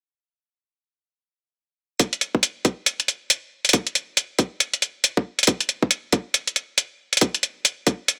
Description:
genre	deep dubstep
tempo	138 BPM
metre	4/4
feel	swing 61% on 16ths, half-time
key	none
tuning	none
part	electronic hi-hat	drums	2.0-8.2 s	none	-20 LUFS	equal	none
part	electronic kick drum	drums	2.0-8.0 s	none	-22 LUFS	equal	high-pass filter on kick, high-pass filter on room
room	little or no reverb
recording	none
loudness	-22 LUFS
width	mono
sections	2.0-8.2 A section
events	none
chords	none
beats	| 2.00 2.43 2.87 3.30 | 3.74 4.17 4.61 5.04 | 5.48 5.91 6.35 6.78 | 7.21 7.65 8.09

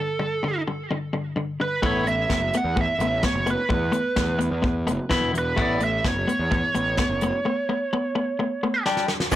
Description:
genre	indie rock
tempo	128 BPM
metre	4/4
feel	straight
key	unclear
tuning	A4 = 440 Hz
part	biting lead guitar	melody	0.0-8.8 s	A4 to F#5	-26 LUFS	right 3 dB	overdrive, digital delay
part	twangy electric guitar	riff	0.0-9.4 s	G2 to G4	-25 LUFS	left 2 dB	none
part	fuzz picked electric bass	bass	1.8-9.4 s	E1 to E2	-28 LUFS	equal	overdrive
part	soft brush drum kit	drums	1.8-9.4 s	crash cymbal, hi-hat, kick drum, snare drum	-27 LUFS	equal	none
part	egg shaker	percussion	9.3-9.4 s	none	-33 LUFS	left 4 dB	none
room	light reverb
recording	blown-out, overdriven recording, overdrive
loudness	-21 LUFS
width	side -13 dB against mid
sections	0.0-9.3 A section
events	drum fill 8.9-9.3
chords	0.0 G5; 1.8 Asus2; 5.1 E5; 5.6 Aadd9; 8.9 G5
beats	0.42 0.89 1.36 | 1.83 2.30 2.76 3.23 | 3.70 4.17 4.64 5.11 | 5.58 6.04 6.51 6.98 | 7.45 7.92 8.39 8.85 | 9.32

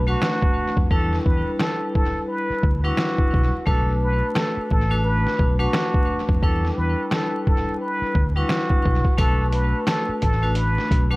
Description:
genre	hip hop, boom-bap hip-hop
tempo	87 BPM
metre	4/4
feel	swing 60% on 16ths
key	B minor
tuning	A4 = 438 Hz
part	trumpet with plunger mute	melody	0.0-11.2 s	F#4 to B4	-26 LUFS	equal	high-pass filter, low-pass filter, tape echo
part	fingered electric bass	bass	0.0-11.2 s	A1 to E#2	-22 LUFS	equal	none
part	vibraphone with hard mallets	accompaniment	0.1-11.2 s	G3 to B4	-26 LUFS	left 1 dB	high-pass filter, low-pass filter, tape echo
part	trip hop sampler-style drum kit	drums	0.2-11.1 s	hi-hat, kick drum, snare drum	-22 LUFS	equal	vintage 12-bit sampler grit
room	little or no reverb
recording	echo-heavy mix, vinyl crackle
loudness	-19 LUFS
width	side -22 dB against mid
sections	0.0-11.2 A section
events	break 0.0-9.2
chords	0.0 Bm7; 0.9 Em7; 3.7 Bm7; 6.4 Em7; 9.2 Bm7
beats	0.22 | 0.91 1.60 2.29 2.98 | 3.67 4.36 5.05 5.74 | 6.43 7.12 7.80 8.49 | 9.19 9.87 10.56

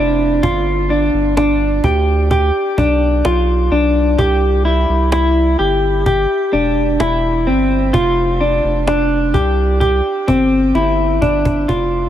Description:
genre	dream pop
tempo	64 BPM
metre	4/4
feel	straight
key	unclear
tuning	A4 = 441 Hz
part	clean electric guitar	arpeggios	0.0-12.1 s	C4 to G4	-14 LUFS	equal	lush chorus, tape echo
part	round analog bass	bass	0.0-12.1 s	E1 to D2	-18 LUFS	equal	none
part	cajon	drums	0.4-11.9 s	none	-19 LUFS	equal	none
room	light reverb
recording	none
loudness	-12 LUFS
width	side -11 dB against mid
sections	0.0-11.7 A section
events	drum fill 10.7-11.7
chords	0.4 G7; 4.2 C; 7.9 Fsus2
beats	| 0.44 1.37 2.31 3.25 | 4.19 5.12 6.06 7.00 | 7.94 8.87 9.81 10.75 | 11.69

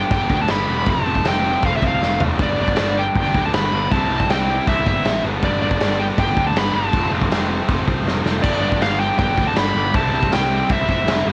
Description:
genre	punk rock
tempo	159 BPM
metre	4/4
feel	straight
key	G mixolydian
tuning	A4 = 439 Hz
part	smooth overdriven lead guitar	melody	0.0-11.3 s	D5 to B5	-24 LUFS	equal	cassette tape
part	distorted electric guitar	riff	0.0-11.3 s	F2 to G4	-27 LUFS	equal	overdrive, cassette tape
part	fuzz picked electric bass	bass	0.0-11.3 s	E1 to D2	-26 LUFS	equal	overdrive
part	raw garage drum kit	drums	0.1-11.2 s	crash cymbal, kick drum, snare drum, toms	-23 LUFS	equal	none
room	little or no reverb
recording	home recording on cassette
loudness	-19 LUFS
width	mono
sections	0.0-8.4 A section; 8.4-11.3 A section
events	drum fill 2.0-2.4, 8.1-8.4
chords	0.0 G; 0.9 F; 2.4 G; 3.9 C; 5.2 G; 6.9 F; 8.4 G; 10.0 C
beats	0.11 0.49 | 0.88 1.26 1.64 2.02 | 2.40 2.78 3.16 3.54 | 3.91 4.29 4.67 5.05 | 5.43 5.80 6.18 6.56 | 6.94 7.31 7.69 8.07 | 8.45 8.82 9.20 9.57 | 9.95 10.33 10.71 11.08

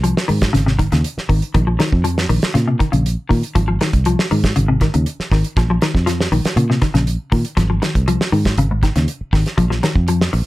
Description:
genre	afrobeat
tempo	120 BPM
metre	4/4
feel	straight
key	Bb minor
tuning	A4 = 440 Hz
part	semi-hollow electric guitar	arpeggios	0.0-10.4 s	Ab2 to F3	-19 LUFS	left 2 dB	ensemble chorus
part	fingered electric bass	bass	0.0-10.4 s	Ab1 to Bb2	-17 LUFS	equal	none
part	damped 70s drum kit	drums	0.0-10.4 s	hi-hat, kick drum, snare drum	-19 LUFS	right 1 dB	none
room	light reverb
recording	none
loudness	-14 LUFS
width	side -18 dB against mid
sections	0.0-10.5 A section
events	none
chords	0.0 Ab; 1.5 Bb5; 3.6 Ab; 5.6 Bb5; 7.6 Ab5; 9.6 Bb5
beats	0.04 0.54 1.04 | 1.54 2.05 2.55 3.05 | 3.55 4.05 4.56 5.06 | 5.56 6.06 6.56 7.07 | 7.57 8.07 8.57 9.07 | 9.57 10.07

